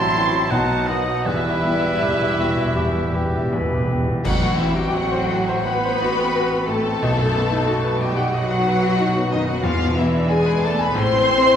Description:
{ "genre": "classical, romantic movement for piano and orchestra", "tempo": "76-96 BPM", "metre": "4/4", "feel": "rubato", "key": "E minor", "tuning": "A4 = 440 Hz", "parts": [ { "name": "clear grand piano", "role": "melody", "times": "0.0-11.6 s", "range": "E1 to G#5", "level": "-22 LUFS", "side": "left 1 dB", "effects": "none" }, { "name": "muted symphonic violin section", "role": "melody", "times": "0.0-11.6 s", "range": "D#5 to C6", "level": "-26 LUFS", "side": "equal", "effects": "none" }, { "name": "bright oboe", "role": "second line", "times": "0.0-3.5 s", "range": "B4 to A5", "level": "-26 LUFS", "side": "right 3 dB", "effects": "none" }, { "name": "clear clarinet", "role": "second line", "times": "0.0-4.2 s", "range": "D#4 to B4", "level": "-29 LUFS", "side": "equal", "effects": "none" }, { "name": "mellow small flute group", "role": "second line", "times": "0.0-3.5 s", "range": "E5 to C6", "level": "-28 LUFS", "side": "equal", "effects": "none" }, { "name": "muted symphonic violin section", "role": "second line", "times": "0.0-11.6 s", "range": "D#4 to C6", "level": "-28 LUFS", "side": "left 3 dB", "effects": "none" }, { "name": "mellow bassoon", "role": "accompaniment", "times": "0.0-3.9 s", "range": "F#3 to G3", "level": "-29 LUFS", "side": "right 2 dB", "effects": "none" }, { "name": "muted symphonic viola section", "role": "accompaniment", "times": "0.0-11.6 s", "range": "D#3 to C5", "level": "-26 LUFS", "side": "left 2 dB", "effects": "none" }, { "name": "mellow French horn section", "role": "sustained chords", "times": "0.0-3.9 s", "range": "F#3 to C4", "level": "-31 LUFS", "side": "equal", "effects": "none" }, { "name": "clear trumpet", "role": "stabs", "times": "0.0-3.9 s", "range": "D#4 to E4", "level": "-29 LUFS", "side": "right 1 dB", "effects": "none" }, { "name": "muted symphonic cello section", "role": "bass", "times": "0.0-11.6 s", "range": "E2 to C4", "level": "-28 LUFS", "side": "right 2 dB", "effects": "none" }, { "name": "muted symphonic double bass section", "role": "bass", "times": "0.0-11.6 s", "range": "E1 to E2", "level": "-28 LUFS", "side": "right 2 dB", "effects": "none" }, { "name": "timpani", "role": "percussion", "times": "1.3-10.6 s", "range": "E2 to B2", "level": "-28 LUFS", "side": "equal", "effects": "none" }, { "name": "clash cymbals and concert bass drum", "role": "percussion", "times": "4.2-5.6 s", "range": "none", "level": "-29 LUFS", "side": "equal", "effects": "none" } ], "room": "wet recital hall reverb, RT60 1.8 s", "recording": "recorded in a church or concert hall", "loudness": "-17 LUFS", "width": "side -8 dB against mid", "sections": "0.0-4.2 A section; 4.2-11.6 A section", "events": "timpani fill 1.3-4.2; band accent 4.2-4.9", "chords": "0.0 F#m7b5/A; 0.5 B7; 1.3 Em; 4.2 F#dim/A; 7.0 B7; 9.6 E7; 11.0 Am" }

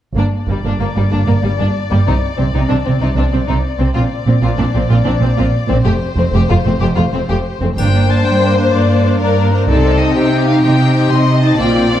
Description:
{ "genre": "cinematic, heroic adventure film score", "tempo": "126 BPM (dotted quarters)", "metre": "12/8", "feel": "straight", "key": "G minor", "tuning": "A4 = 439 Hz", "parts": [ { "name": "rich chamber violin section", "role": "melody", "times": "0.2-12.0 s", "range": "C5 to C6", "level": "-22 LUFS", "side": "left 8 dB", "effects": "none" }, { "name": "clear symphonic violin section", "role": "second line", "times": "0.2-12.0 s", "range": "G3 to Eb5", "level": "-20 LUFS", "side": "left 4 dB", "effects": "none" }, { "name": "rich symphonic viola section", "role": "accompaniment", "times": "0.2-12.0 s", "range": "A3 to F4", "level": "-20 LUFS", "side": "right 1 dB", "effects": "none" }, { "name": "clear symphonic double bass section", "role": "bass", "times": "0.2-11.9 s", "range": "F1 to C2", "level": "-17 LUFS", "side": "right 2 dB", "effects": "none" }, { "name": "rich symphonic cello section", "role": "bass", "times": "0.2-12.0 s", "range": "F2 to C3", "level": "-16 LUFS", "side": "right 2 dB", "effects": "none" }, { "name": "dark French horn section", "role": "sustained chords", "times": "7.8-12.0 s", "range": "Bb3 to F4", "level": "-18 LUFS", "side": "left 2 dB", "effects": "none" }, { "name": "triangle", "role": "percussion", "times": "7.8-8.4 s", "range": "none", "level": "-37 LUFS", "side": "left 3 dB", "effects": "none" } ], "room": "moderate recital hall reverb, RT60 1.7 s", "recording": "dark, warm production", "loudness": "-12 LUFS", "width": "side -11 dB against mid", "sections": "0.2-7.8 A section; 7.8-12.0 B section", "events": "none", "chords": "0.2 Gm; 2.1 Csus2; 4.0 Bbadd9; 5.9 F; 7.8 Gm; 9.7 Cm" }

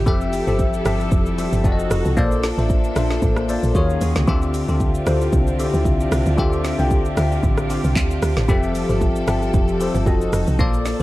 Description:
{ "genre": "amapiano", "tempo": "114 BPM", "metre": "4/4", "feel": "swing 55% on 16ths", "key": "unclear", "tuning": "A4 = 440 Hz", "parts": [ { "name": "bell-like tine electric piano", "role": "accompaniment", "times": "0.0-11.0 s", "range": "D3 to G5", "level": "-21 LUFS", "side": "left 2 dB", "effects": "phaser" }, { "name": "warm studio string section", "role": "sustained chords", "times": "0.0-11.0 s", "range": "D3 to A4", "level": "-28 LUFS", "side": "right 3 dB", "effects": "sidechain pumping" }, { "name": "woody log drum bass", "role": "bass", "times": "0.0-11.0 s", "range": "F1 to Eb2", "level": "-21 LUFS", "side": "equal", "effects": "none" }, { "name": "deep house drum kit", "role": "drums", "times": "0.1-11.0 s", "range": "handclaps, hi-hat, kick drum, rim click, shaker, snare drum", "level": "-22 LUFS", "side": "equal", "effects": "none" }, { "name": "congas and bongos", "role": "percussion", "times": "8.5-10.7 s", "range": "none", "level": "-29 LUFS", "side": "right 5 dB", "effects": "none" } ], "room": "little or no reverb", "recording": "dark, warm production", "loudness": "-17 LUFS", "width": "side -17 dB against mid", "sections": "0.0-11.0 A section", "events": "none", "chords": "0.1 Fmaj9; 1.6 F7b9; 2.2 Bbmaj7; 3.8 Ebm11; 4.3 Dm11; 8.5 Fmaj9; 10.1 F7b9" }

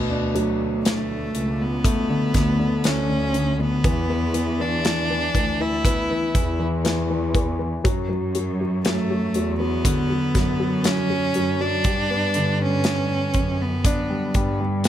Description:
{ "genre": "pop ballad", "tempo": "60 BPM", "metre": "4/4", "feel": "straight", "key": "D major", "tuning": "A4 = 440 Hz", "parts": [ { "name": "warm concert grand piano", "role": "accompaniment", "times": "0.0-14.9 s", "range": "B2 to G4", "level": "-25 LUFS", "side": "left 2 dB", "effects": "none" }, { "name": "dark studio cello section", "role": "bass", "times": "0.0-14.9 s", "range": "C#2 to G2", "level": "-26 LUFS", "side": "equal", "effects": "none" }, { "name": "modern studio drum kit", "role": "drums", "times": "0.4-14.9 s", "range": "hi-hat, kick drum, snare drum", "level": "-24 LUFS", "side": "equal", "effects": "none" }, { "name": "rich cello", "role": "melody", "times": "0.9-14.6 s", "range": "A3 to E4", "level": "-24 LUFS", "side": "right 1 dB", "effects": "none" } ], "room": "small room ambience", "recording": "none", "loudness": "-20 LUFS", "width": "side -11 dB against mid", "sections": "0.0-14.9 A section", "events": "none", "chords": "0.0 D6; 3.9 E5; 7.8 Bm; 11.8 G" }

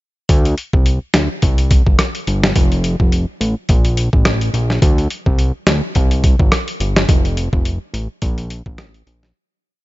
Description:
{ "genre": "dancehall", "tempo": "106 BPM", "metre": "4/4", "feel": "swing 56% on 16ths", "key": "unclear", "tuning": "A4 = 442 Hz", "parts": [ { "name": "fat analog bass", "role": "bass", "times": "0.3-9.3 s", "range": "F1 to D2", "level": "-17 LUFS", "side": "equal", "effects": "none" }, { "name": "boom bap sampler-style drum kit", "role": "drums", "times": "0.3-9.3 s", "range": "hi-hat, kick drum, rim click, snare drum", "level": "-14 LUFS", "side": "equal", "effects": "none" } ], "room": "digital ambience", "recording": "nothing above 7.7 kHz", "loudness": "-13 LUFS", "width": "side -18 dB against mid", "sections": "0.3-9.3 chorus", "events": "fade-out 7.1-9.3", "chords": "none" }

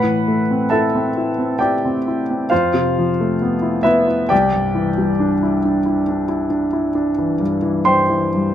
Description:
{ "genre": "classical, impressionist solo piano", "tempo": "67 BPM", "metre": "5/4", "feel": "rubato", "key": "unclear", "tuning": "A4 = 439 Hz", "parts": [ { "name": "clear grand piano", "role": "solo", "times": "0.0-8.5 s", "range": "C2 to C6", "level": "-15 LUFS", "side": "equal", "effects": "none" } ], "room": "light reverb", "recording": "close, detailed microphones", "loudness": "-15 LUFS", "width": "side -10 dB against mid", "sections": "0.0-8.5 A section", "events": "none", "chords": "0.0 Amadd9; 2.5 Fmaj7#11; 4.3 Cadd9" }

